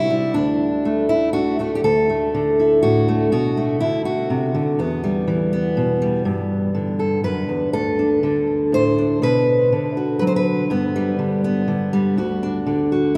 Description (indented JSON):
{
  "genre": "folk, solo fingerstyle acoustic guitar",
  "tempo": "122 BPM",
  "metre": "3/4",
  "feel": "straight",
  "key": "D mixolydian",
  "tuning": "A4 = 440 Hz",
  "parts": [
    { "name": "fingerpicked steel-string acoustic guitar", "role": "solo", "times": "0.0-13.2 s", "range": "D2 to C5", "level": "-20 LUFS", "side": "equal", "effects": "none" }
  ],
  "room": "wet cathedral reverb, RT60 5.8 s",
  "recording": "in a vast, echoing space",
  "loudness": "-20 LUFS",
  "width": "mono",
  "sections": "0.0-1.8 A section; 1.8-13.2 B section",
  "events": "none",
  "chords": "0.3 D; 1.8 Dadd9; 3.3 Bm7; 4.8 Em; 6.3 Gadd9; 7.7 D5; 9.2 Bm; 10.7 G; 12.2 D"
}